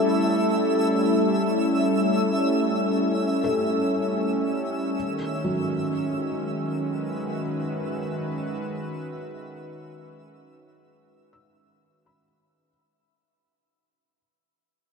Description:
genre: ambient.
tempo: free time.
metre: none.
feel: none.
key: unclear.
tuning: A4 = 440 Hz.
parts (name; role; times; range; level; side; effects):
warm analog pad; sustained chords; 0.0-12.7 s; Eb3 to B4; -24 LUFS; equal; chorus.
felt-muted upright piano; arpeggios; 0.0-14.2 s; F#3 to E6; -32 LUFS; left 1 dB; ping-pong delay.
twinkling granular texture; texture; 0.0-12.7 s; E5 to E6; -32 LUFS; equal; built-in reverb.
room: wet huge ambient reverb, RT60 7.4 s.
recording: dark, warm production.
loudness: -22 LUFS.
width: side -5 dB against mid.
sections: 0.0-12.7 A section.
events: filter sweep on analog synth pad 0.0-12.7; fade-out 2.4-12.7.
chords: 0.0 A7; 4.9 C#m7.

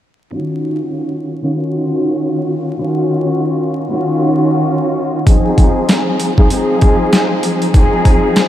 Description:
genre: hip hop, boom-bap hip-hop.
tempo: 97 BPM.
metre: 4/4.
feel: swing 58% on 16ths.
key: Eb dorian.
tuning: A4 = 440 Hz.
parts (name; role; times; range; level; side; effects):
rich studio string section; accompaniment; 0.3-8.5 s; Eb3 to Ab4; -14 LUFS; equal; high-pass filter, low-pass filter.
boom bap sampler-style drum kit; drums; 5.3-8.5 s; hi-hat, kick drum, snare drum; -12 LUFS; equal; overdrive.
room: moderate huge ambient reverb, RT60 8.5 s.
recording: dreamy mix soaked in reverb, vinyl crackle.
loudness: -12 LUFS.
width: side -12 dB against mid.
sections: 0.3-8.5 A section.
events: filter sweep on string section 0.3-8.5.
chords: 0.3 Ebm9; 5.3 Fm7.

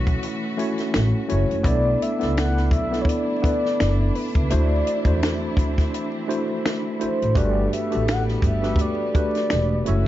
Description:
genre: R&B, neo-soul.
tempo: 84 BPM.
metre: 4/4.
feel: swing 56% on 16ths.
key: unclear.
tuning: A4 = 440 Hz.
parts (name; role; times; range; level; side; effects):
tine electric piano; accompaniment; 0.0-10.1 s; A3 to E5; -25 LUFS; equal; overdrive, fast stereo tremolo, plate reverb.
rich studio string section; sustained chords; 0.0-10.1 s; E3 to F#4; -32 LUFS; equal; plate reverb.
upright bass; bass; 0.0-10.1 s; E1 to E2; -22 LUFS; equal; none.
compact cocktail drum kit; drums; 0.1-10.0 s; finger snaps, hi-hat, kick drum, snare drum; -24 LUFS; equal; none.
mellow horn-like synth lead; melody; 1.3-10.1 s; B4 to F#5; -26 LUFS; left 1 dB; chorus, slapback echo, plate reverb.
room: light reverb.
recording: dark, warm production, vinyl crackle, nothing above 7.6 kHz.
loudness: -19 LUFS.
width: side -14 dB against mid.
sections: 0.0-10.1 A section.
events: none.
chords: 0.0 F#m7; 1.6 Bm11; 4.5 D9; 7.4 Gmaj9.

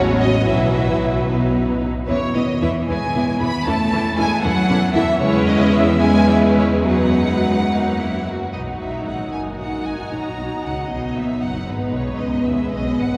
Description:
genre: quick classical-period movement for string orchestra.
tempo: 76 BPM (dotted quarters).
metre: 6/8.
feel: rubato.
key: B major from 5.2 s.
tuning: A4 = 441 Hz.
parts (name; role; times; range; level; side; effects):
rich studio violin section; second line; 0.0-13.2 s; C#4 to C#5; -29 LUFS; equal; none.
rich studio viola section; accompaniment; 0.0-13.2 s; D#3 to E4; -23 LUFS; equal; none.
rich studio double bass section; bass; 0.0-13.2 s; F#1 to F#2; -27 LUFS; equal; none.
rich studio violin section; melody; 0.2-13.2 s; B4 to B5; -27 LUFS; equal; none.
rich studio cello section; bass; 0.2-13.2 s; F#2 to B3; -27 LUFS; equal; none.
room: wet cathedral reverb, RT60 5.5 s.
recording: heard from further back in the room.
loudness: -19 LUFS.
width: mono.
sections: 0.0-8.5 A section; 8.5-13.2 B section.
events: none.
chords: 0.5 Bsus4; 1.3 B; 2.1 E; 3.7 A/E; 5.2 C#m7/E; 6.9 B/F#; 7.7 F#; 8.5 B; 10.1 F#/A#; 10.9 B; 11.7 G#m.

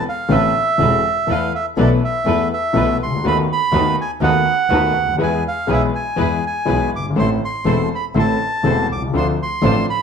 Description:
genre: tango.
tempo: 122 BPM.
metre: 4/4.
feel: rubato.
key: A harmonic minor.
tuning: A4 = 440 Hz.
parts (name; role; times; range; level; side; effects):
bandoneon; melody; 0.0-10.0 s; D5 to D6; -20 LUFS; right 3 dB; none.
warm concert grand piano; accompaniment; 0.3-9.8 s; E1 to A4; -19 LUFS; left 3 dB; none.
muted studio string section; stabs; 0.3-9.8 s; C4 to C5; -26 LUFS; right 2 dB; none.
clear double bass; bass; 0.3-9.8 s; E1 to E2; -23 LUFS; right 2 dB; none.
room: moderate large studio reverb, RT60 0.9 s.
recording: band playing live in one room.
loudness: -15 LUFS.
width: side -6 dB against mid.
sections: 0.0-10.0 A section.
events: none.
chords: 0.0 Amadd9; 1.3 Esus4; 3.2 B7/D#; 5.2 E; 7.2 Am; 9.1 Dm7.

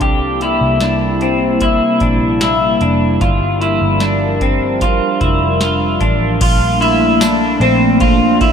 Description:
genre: dream pop.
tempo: 75 BPM.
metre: 4/4.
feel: straight.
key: unclear.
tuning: A4 = 439 Hz.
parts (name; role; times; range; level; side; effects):
warbly tape-like pad; sustained chords; 0.0-8.5 s; C3 to Bb4; -17 LUFS; right 1 dB; chorus, built-in reverb.
electric guitar through a small old amp; arpeggios; 0.0-8.5 s; C4 to G4; -15 LUFS; left 2 dB; wide subtle chorus, analog delay.
vintage muted picked electric bass; bass; 0.0-8.5 s; F1 to C2; -19 LUFS; equal; none.
booming analog drum machine; drums; 0.0-8.5 s; crash cymbal, hi-hat, kick drum, ride cymbal, snare drum, tambourine; -19 LUFS; equal; overdrive.
room: wet cathedral reverb, RT60 5.6 s.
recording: dreamy mix soaked in reverb.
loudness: -11 LUFS.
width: side -7 dB against mid.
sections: 0.0-6.4 A section; 6.4-8.5 B section.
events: none.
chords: 0.0 C7; 3.2 Gm7; 6.4 Bbmaj7.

